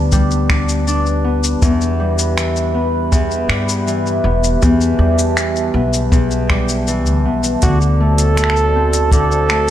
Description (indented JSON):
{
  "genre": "folktronica",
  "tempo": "80 BPM",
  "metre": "4/4",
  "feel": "straight",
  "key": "unclear",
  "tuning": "A4 = 439 Hz",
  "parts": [
    { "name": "warbly tape-like pad", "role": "sustained chords", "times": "0.0-9.7 s", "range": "F#4 to B5", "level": "-23 LUFS", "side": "equal", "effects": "chorus, built-in reverb" },
    { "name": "Celtic harp", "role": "arpeggios", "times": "0.0-9.7 s", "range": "E2 to F#4", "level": "-19 LUFS", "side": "left 1 dB", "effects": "low-pass filter, digital delay" },
    { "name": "upright bass", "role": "bass", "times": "0.0-9.7 s", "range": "E1 to G2", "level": "-17 LUFS", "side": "equal", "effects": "none" },
    { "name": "kick drum", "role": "drums", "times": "0.1-9.3 s", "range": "none", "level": "-15 LUFS", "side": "equal", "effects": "none" },
    { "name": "organic electronic drum kit", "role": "drums", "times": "0.1-9.6 s", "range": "finger snaps, hi-hat, shaker", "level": "-21 LUFS", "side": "left 1 dB", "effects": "none" },
    { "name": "mellow flugelhorn", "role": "melody", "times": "7.6-9.7 s", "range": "F#4 to A4", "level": "-17 LUFS", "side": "right 2 dB", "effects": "none" }
  ],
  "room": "light reverb, small room ambience",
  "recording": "lossy compression artefacts",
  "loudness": "-13 LUFS",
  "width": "side -11 dB against mid",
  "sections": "0.0-9.7 A section",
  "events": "none",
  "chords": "0.0 Gadd9; 1.6 Em; 7.6 D7"
}